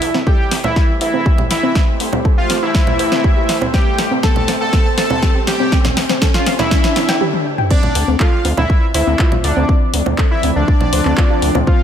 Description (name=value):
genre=melodic techno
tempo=121 BPM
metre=4/4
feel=straight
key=D minor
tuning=A4 = 440 Hz
part: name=fat analog lead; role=melody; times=0.0-11.8 s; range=D4 to A4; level=-20 LUFS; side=equal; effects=chorus, sidechain pumping, ping-pong delay
part: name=soft supersaw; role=second line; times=0.0-11.8 s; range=D5 to A5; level=-25 LUFS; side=equal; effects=sidechain pumping, tape echo
part: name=deep dark ambient pad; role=sustained chords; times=0.5-11.8 s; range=F3 to F5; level=-25 LUFS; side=right 1 dB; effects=chorus, built-in reverb, sidechain pumping
part: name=gritty driven synth bass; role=bass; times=0.0-11.6 s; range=D2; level=-21 LUFS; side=equal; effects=sidechain pumping, high-pass filter
part: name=house drum kit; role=drums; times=0.0-11.6 s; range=congas, crash cymbal, handclaps, hi-hat, snare drum, toms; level=-20 LUFS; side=equal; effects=studio reverb
part: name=riser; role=sound effects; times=0.0-7.2 s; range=none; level=-26 LUFS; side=equal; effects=none
part: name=soft round pluck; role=arpeggios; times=0.1-11.8 s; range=C4 to G5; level=-22 LUFS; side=equal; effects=chorus, sidechain pumping, tape echo
part: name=electronic kick drum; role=drums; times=0.3-11.8 s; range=none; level=-14 LUFS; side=equal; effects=studio reverb
room=light reverb, digital ambience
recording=none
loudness=-12 LUFS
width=side -9 dB against mid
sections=0.0-7.7 A section; 7.7-11.8 B section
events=build-up 0.0-7.7; drum fill 0.0-7.2, 7.2-7.7; riser 0.0-7.2; filter sweep on synth arpeggio sound 0.0-7.7; break 7.2-7.7; drop 7.7-11.8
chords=0.0 Am7/D; 7.7 Dm7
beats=0.27 0.76 1.26 | 1.75 2.25 2.75 3.24 | 3.74 4.23 4.73 5.23 | 5.72 6.22 6.71 7.21 | 7.71 8.20 8.70 9.19 | 9.69 10.18 10.68 11.18 | 11.67